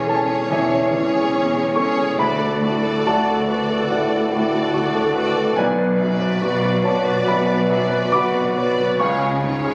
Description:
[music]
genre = classical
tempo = 71 BPM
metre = 4/4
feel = rubato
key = unclear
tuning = A4 = 439 Hz
[part]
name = clear baby grand piano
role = melody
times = 0.0-9.7 s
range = B1 to D6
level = -22 LUFS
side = equal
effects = none
[part]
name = warm symphonic violin section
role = melody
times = 0.0-9.7 s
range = C#5 to D5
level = -29 LUFS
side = equal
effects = none
[part]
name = warm symphonic violin section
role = second line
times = 0.0-9.7 s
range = G#4 to B4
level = -29 LUFS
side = equal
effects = none
[part]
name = warm symphonic viola section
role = accompaniment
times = 0.0-9.7 s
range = C#4 to F#4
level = -30 LUFS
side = equal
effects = none
[part]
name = dark symphonic double bass section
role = bass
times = 0.0-9.7 s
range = E1 to D2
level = -30 LUFS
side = equal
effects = none
[part]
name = warm symphonic cello section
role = bass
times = 0.0-9.7 s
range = D2 to C#3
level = -30 LUFS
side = equal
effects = none
[sound]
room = wet recital hall reverb, RT60 1.7 s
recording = recorded on a phone in the room, club reverb, vinyl crackle, compression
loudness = -19 LUFS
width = mono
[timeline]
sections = 0.0-9.7 A section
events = none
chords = 0.0 C#m/E; 2.2 D; 5.6 Bm; 9.0 C#

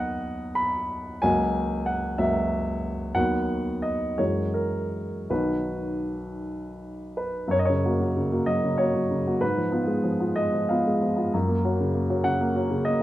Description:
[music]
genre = classical, romantic character piece for solo piano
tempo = 52-65 BPM (dotted quarters)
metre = 6/8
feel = rubato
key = B major, F# major from 7.5 s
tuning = A4 = 440 Hz
[part]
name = warm baby grand piano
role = solo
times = 0.0-13.0 s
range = B1 to B5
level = -23 LUFS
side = equal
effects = none
[sound]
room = moderate recital hall reverb, RT60 1.4 s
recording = close, detailed microphones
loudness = -23 LUFS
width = side -14 dB against mid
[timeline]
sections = 0.0-7.5 A section; 7.5-13.0 B section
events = none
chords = 0.0 B/D#; 1.2 F#7/C#; 3.2 B/D#; 4.2 F#9; 5.3 B; 7.5 F#; 9.4 Fdim/Ab; 11.3 F#

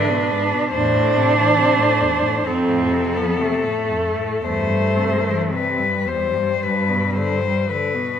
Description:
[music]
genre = classical, lyrical piece for cello ensemble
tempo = 54-72 BPM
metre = 4/4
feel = rubato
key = C major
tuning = A4 = 440 Hz
[part]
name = rich cello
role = melody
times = 0.0-8.2 s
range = A4 to C5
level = -22 LUFS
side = left 6 dB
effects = none
[part]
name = rich cello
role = second line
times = 0.0-7.7 s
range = G3 to D4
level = -20 LUFS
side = right 4 dB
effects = none
[part]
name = rich cello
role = accompaniment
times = 0.0-8.2 s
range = E2 to G3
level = -25 LUFS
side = left 3 dB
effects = none
[part]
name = rich cello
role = bass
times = 0.7-7.5 s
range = F2 to A2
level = -24 LUFS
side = equal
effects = none
[sound]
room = wet scoring stage reverb, RT60 1.6 s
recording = none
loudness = -17 LUFS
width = side -8 dB against mid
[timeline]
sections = 0.0-8.2 A section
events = none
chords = 0.0 E7 (rootless); 0.7 Am/E; 2.5 F; 4.4 C/E; 6.6 G

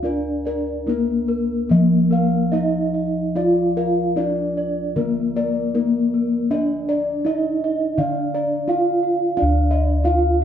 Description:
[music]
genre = gamelan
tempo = 72-88 BPM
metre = 4/4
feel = straight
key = unclear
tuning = A4 = 440 Hz
[part]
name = gamelan-type bronze metallophone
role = melody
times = 0.0-10.4 s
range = Bb3 to F4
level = -22 LUFS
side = left 2 dB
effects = none
[part]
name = gamelan-type bossed gongs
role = arpeggios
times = 0.0-10.4 s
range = Bb4 to F5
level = -26 LUFS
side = left 2 dB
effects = none
[part]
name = gamelan-type bronze metallophone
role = arpeggios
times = 0.0-10.4 s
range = Bb4 to F5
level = -27 LUFS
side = right 4 dB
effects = none
[part]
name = gamelan-type bossed gongs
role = bass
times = 0.0-10.4 s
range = D2 to F4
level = -22 LUFS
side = equal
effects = none
[sound]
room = moderate large studio reverb, RT60 1.1 s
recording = band playing live in one room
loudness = -18 LUFS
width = side -9 dB against mid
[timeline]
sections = 0.0-9.4 A section; 9.4-10.4 B section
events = none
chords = none

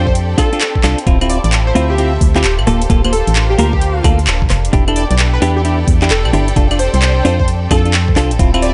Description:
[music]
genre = UK garage, two-step garage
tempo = 131 BPM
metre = 4/4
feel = swing 64% on 16ths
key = unclear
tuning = A4 = 440 Hz
[part]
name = rich studio violin section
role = sustained chords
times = 0.0-8.7 s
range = Bb3 to A4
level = -28 LUFS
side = equal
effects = sidechain pumping
[part]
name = clean electric guitar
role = stabs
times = 0.0-8.7 s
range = Bb3 to D5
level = -20 LUFS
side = equal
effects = none
[part]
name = organ-like FM bass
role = bass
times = 0.0-8.7 s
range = D1 to F2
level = -17 LUFS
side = equal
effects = none
[part]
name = rich studio string section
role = texture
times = 0.0-8.7 s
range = G4 to G5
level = -29 LUFS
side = equal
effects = sidechain pumping
[part]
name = plucky unison lead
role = melody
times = 0.1-8.7 s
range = G4 to D5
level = -23 LUFS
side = equal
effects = lush chorus, cassette tape, dub echo
[part]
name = electronic kick drum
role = drums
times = 0.1-8.5 s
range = none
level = -16 LUFS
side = equal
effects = overdrive, small room ambience
[part]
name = garage drum kit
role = drums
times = 0.2-8.7 s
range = claves, handclaps, hi-hat, rim click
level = -22 LUFS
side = equal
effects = overdrive, small room ambience
[sound]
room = little or no reverb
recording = nothing above 10.6 kHz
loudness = -13 LUFS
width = mono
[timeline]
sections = 0.0-8.7 A section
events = drum fill 0.8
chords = 0.0 F6; 1.1 Dm9; 2.7 Gm9/D; 4.7 Em7; 6.6 F6

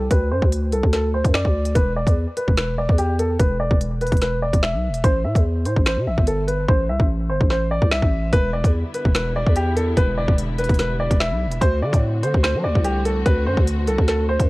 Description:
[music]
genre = hip hop, drill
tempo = 146 BPM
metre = 4/4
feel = half-time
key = E minor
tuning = A4 = 440 Hz
[part]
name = clear upright piano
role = melody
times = 0.0-14.4 s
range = G4 to E5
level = -23 LUFS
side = equal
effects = low-pass filter, tape echo
[part]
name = growling 808-style bass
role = bass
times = 0.0-14.5 s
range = E1 to F#3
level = -22 LUFS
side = equal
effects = none
[part]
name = drill drum kit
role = drums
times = 0.1-14.5 s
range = finger snaps, hi-hat, kick drum, snare drum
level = -18 LUFS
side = equal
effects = none
[part]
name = dark symphonic string section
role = sustained chords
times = 8.3-14.5 s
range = D3 to F#4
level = -32 LUFS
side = left 1 dB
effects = none
[sound]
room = studio ambience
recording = worn, warbling old tape, cassette tape, warbly pitch drift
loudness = -17 LUFS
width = side -21 dB against mid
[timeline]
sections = 0.0-14.5 A section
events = filter sweep on upright piano 0.0-8.3; hi-hats muted 6.7-8.3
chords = 0.0 D; 1.8 E5; 5.0 Am7; 8.3 Em7; 11.6 D7

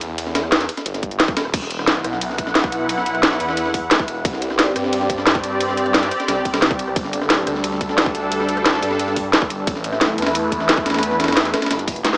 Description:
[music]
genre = dark technical drum and bass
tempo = 177 BPM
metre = 4/4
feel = straight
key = E minor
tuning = A4 = 436 Hz
[part]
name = phased detuned saw bass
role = bass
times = 0.0-12.0 s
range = E1 to G2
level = -27 LUFS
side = equal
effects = phaser, overdrive, sidechain pumping
[part]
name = breakbeat sampler-style drum kit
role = drums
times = 0.0-12.1 s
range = hi-hat, ride cymbal, snare drum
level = -25 LUFS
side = equal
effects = high-pass filter on cymbals, high-pass filter on snare, high-pass filter on hats
[part]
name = drum and bass drum kit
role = drums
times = 0.0-12.2 s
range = crash cymbal, hi-hat, rim click, snare drum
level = -18 LUFS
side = equal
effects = none
[part]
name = electronic kick drum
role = drums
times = 1.0-11.9 s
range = none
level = -24 LUFS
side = equal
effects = none
[part]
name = sweeping resonant pad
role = sustained chords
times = 1.5-12.2 s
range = G3 to F#5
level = -21 LUFS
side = equal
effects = chorus, vintage 12-bit sampler grit, sidechain pumping
[sound]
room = light reverb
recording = small speaker sound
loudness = -16 LUFS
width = side -27 dB against mid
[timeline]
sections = 0.0-12.2 A section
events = none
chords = 0.0 N.C.; 1.5 E5; 4.2 Csus2; 7.0 Gsus2; 9.7 A5

